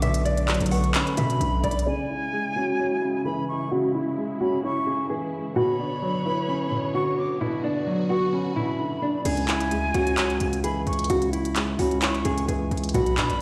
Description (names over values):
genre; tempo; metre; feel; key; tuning
hip hop, trap; 130 BPM; 4/4; half-time; C# phrygian; A4 = 439 Hz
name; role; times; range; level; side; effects
nylon-string guitar; melody; 0.0-13.4 s; D4 to F#5; -29 LUFS; equal; low-pass filter, delay
felt-muted upright piano; accompaniment; 0.0-13.4 s; B2 to C#5; -31 LUFS; equal; low-pass filter
warm symphonic string section; sustained chords; 0.0-9.2 s; C#3 to C#5; -36 LUFS; equal; low-pass filter
distorted 808-style bass; bass; 0.0-1.9, 9.3-13.4 s; B1 to B2; -29 LUFS; equal; distortion
trap drum kit; drums; 0.0-1.9, 9.3-13.4 s; crash cymbal, handclaps, hi-hat; -31 LUFS; equal; none
concert flute; second line; 0.7-13.4 s; G#5 to D6; -33 LUFS; equal; delay
room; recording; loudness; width
light reverb, small room ambience; played on a big sound system in a bare room, large studio reverb; -25 LUFS; mono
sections
0.0-1.9 A section; 1.9-9.3 B section; 9.3-13.4 C section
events
filter sweep 1.9-9.3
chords
0.0 Bmadd9; 1.9 C#m; 5.6 Bmadd9; 9.3 C#m